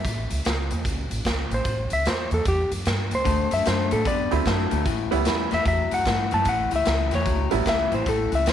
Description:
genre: electric blues shuffle.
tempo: 150 BPM.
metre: 4/4.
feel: swing 64% on 8ths.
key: A mixolydian.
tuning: A4 = 440 Hz.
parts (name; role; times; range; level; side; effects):
clean lap steel guitar; melody; 0.0-8.5 s; G4 to A5; -25 LUFS; left 1 dB; none.
upright bass; bass; 0.0-8.5 s; A1 to A2; -27 LUFS; right 1 dB; none.
raw garage drum kit; drums; 0.0-8.5 s; hi-hat, kick drum, snare drum; -27 LUFS; right 1 dB; none.
electric guitar through a small old amp; riff; 3.2-8.5 s; A2 to B3; -27 LUFS; left 13 dB; none.
bright upright piano; accompaniment; 4.3-8.0 s; F#3 to E4; -26 LUFS; right 15 dB; none.
room: light reverb, studio ambience.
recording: 1960s-style stereo with parts hard left and right.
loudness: -21 LUFS.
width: side -10 dB against mid.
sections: 0.0-8.5 A section.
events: none.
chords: 0.0 A; 3.3 D7; 4.9 A7.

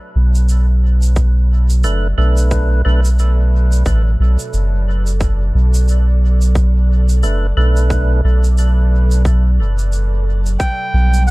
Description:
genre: ambient dub.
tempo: 89 BPM.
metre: 4/4.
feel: swing 59% on 16ths.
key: B minor.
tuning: A4 = 439 Hz.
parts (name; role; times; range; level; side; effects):
soft additive organ-like pad; sustained chords; 0.0-11.3 s; B2 to E5; -29 LUFS; right 1 dB; ensemble chorus, built-in reverb.
soft dub sub bass; bass; 0.2-11.3 s; F#1 to B1; -12 LUFS; equal; tube saturation.
cabasa; drums; 0.4-11.3 s; none; -31 LUFS; right 3 dB; overdrive.
electronic kick drum; drums; 1.2-10.8 s; none; -18 LUFS; equal; overdrive.
percussive tonewheel organ; stabs; 1.8-3.0, 7.2-8.2 s; A3 to B4; -26 LUFS; right 2 dB; overdrive, slow rotary speaker, dub echo.
melodica; melody; 10.6-11.3 s; F#5 to G5; -20 LUFS; right 2 dB; dub echo.
room: digital ambience.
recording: echo-heavy mix.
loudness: -12 LUFS.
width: side -22 dB against mid.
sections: 0.0-11.3 A section.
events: fade-in on ambient pad 0.0-11.3.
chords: 0.0 Bm7; 10.6 Em.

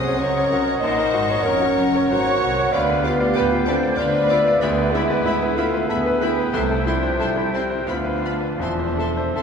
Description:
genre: classical, romantic movement for piano and orchestra.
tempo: 79-98 BPM.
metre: 3/4.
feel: rubato.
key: A minor.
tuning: A4 = 440 Hz.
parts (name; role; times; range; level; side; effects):
bright grand piano; melody; 0.0-9.4 s; Bb1 to D5; -25 LUFS; left 1 dB; none.
rich studio violin section; melody; 0.0-9.4 s; B5 to Eb6; -35 LUFS; left 2 dB; none.
dark clarinet; second line; 0.0-9.4 s; E4 to Gb5; -24 LUFS; left 1 dB; none.
rich studio violin section; second line; 0.0-9.4 s; E5 to C6; -34 LUFS; left 3 dB; none.
warm oboe; second line; 0.0-9.4 s; Db5 to G5; -30 LUFS; equal; none.
mellow bassoon; accompaniment; 0.0-9.4 s; Bb3 to Db4; -30 LUFS; right 1 dB; none.
rich studio viola section; accompaniment; 0.0-9.4 s; C4 to Db5; -28 LUFS; right 3 dB; none.
dark French horn section; sustained chords; 0.0-9.4 s; E3 to Gb4; -26 LUFS; left 3 dB; none.
rich studio cello section; bass; 0.0-9.4 s; C2 to Db3; -30 LUFS; right 3 dB; none.
rich studio double bass section; bass; 0.0-9.4 s; E1 to D2; -29 LUFS; right 4 dB; none.
mellow hollow flute section; second line; 0.2-9.4 s; E5 to A5; -29 LUFS; equal; none.
room: wet concert hall reverb, RT60 1.9 s.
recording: minimal, uncompressed stereo recording.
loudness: -18 LUFS.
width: side -6 dB against mid.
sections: 0.0-9.4 A section.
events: none.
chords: 0.0 Gb; 2.7 Bdim/D; 4.6 E7/D; 6.5 Am/C; 7.9 Bdim/D; 8.6 Am/E.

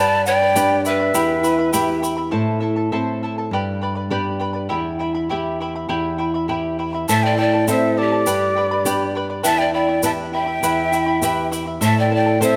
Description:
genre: andean folk, Andean ensemble.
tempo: 101 BPM.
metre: 2/4.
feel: straight.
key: E minor.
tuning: A4 = 438 Hz.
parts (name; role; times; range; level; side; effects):
breathy quena; melody; 0.0-2.0, 7.1-12.6 s; D5 to A5; -23 LUFS; equal; none.
breathy mellow pan flute; second line; 0.0-2.0, 7.1-12.6 s; G4 to E5; -24 LUFS; equal; none.
charango; accompaniment; 0.0-12.6 s; E4 to B5; -26 LUFS; equal; none.
flamenco guitar; accompaniment; 0.0-12.6 s; E2 to A4; -24 LUFS; equal; none.
tube shaker; percussion; 0.3-2.2, 7.1-12.6 s; none; -31 LUFS; equal; none.
room: moderate scoring stage reverb, RT60 2.0 s.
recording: none.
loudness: -19 LUFS.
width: mono.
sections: 0.0-2.3 A section; 2.3-7.1 B section; 7.1-12.6 C section.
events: none.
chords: 0.0 G; 1.2 Em; 2.3 Am; 3.5 G; 4.7 Em; 7.1 Am; 8.3 G; 9.5 Em; 11.8 Am.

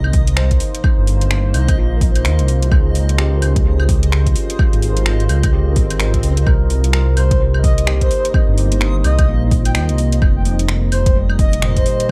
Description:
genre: future garage.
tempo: 128 BPM.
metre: 4/4.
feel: swing 60% on 16ths.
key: C phrygian.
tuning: A4 = 440 Hz.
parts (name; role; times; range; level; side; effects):
tine electric piano; accompaniment; 0.0-12.1 s; Bb2 to Eb5; -28 LUFS; equal; sidechain pumping, tape echo.
deep dark ambient pad; sustained chords; 0.0-12.1 s; Bb3 to Eb5; -30 LUFS; equal; chorus, built-in reverb, sidechain pumping.
dark detuned saw bass; bass; 0.0-11.8 s; F1 to Eb2; -18 LUFS; equal; sidechain pumping.
deep house drum kit; drums; 0.0-12.1 s; claves, finger snaps, hi-hat; -26 LUFS; equal; overdrive, studio ambience.
backwards swelling texture; texture; 0.0-12.1 s; Eb5; -37 LUFS; equal; built-in reverb.
electronic kick drum; drums; 0.1-11.8 s; none; -18 LUFS; equal; overdrive, studio ambience.
swell; sound effects; 5.7-6.5 s; none; -33 LUFS; equal; none.
breathy flute-like synth lead; melody; 7.2-12.1 s; C5 to G5; -25 LUFS; equal; chorus, tremolo, tape echo.
room: digital ambience.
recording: echo-heavy mix.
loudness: -15 LUFS.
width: mono.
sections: 0.0-12.1 A section.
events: swell 5.7-6.5.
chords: 0.0 Cm7; 2.7 Dbmaj7; 6.5 Cm7; 10.2 F9sus4.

